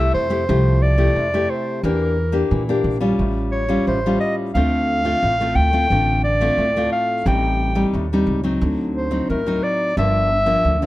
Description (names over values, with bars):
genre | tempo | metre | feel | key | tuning
samba and choro | 89 BPM | 4/4 | straight | unclear | A4 = 440 Hz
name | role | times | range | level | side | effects
warm clarinet | melody | 0.0-10.9 s | Bb4 to G5 | -20 LUFS | equal | plate reverb
nylon-string guitar | accompaniment | 0.0-10.9 s | G2 to G4 | -21 LUFS | left 2 dB | none
upright bass | bass | 0.0-10.9 s | G1 to Bb2 | -21 LUFS | right 1 dB | none
room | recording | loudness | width
light reverb | close, detailed microphones, faint mains hum | -16 LUFS | side -16 dB against mid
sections
0.0-10.9 A section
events
none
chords
0.0 Fmaj9; 1.8 Em7b5; 3.2 Aaug7; 4.6 Dm7; 7.3 Am7b5; 8.6 D7b9; 10.0 Gm7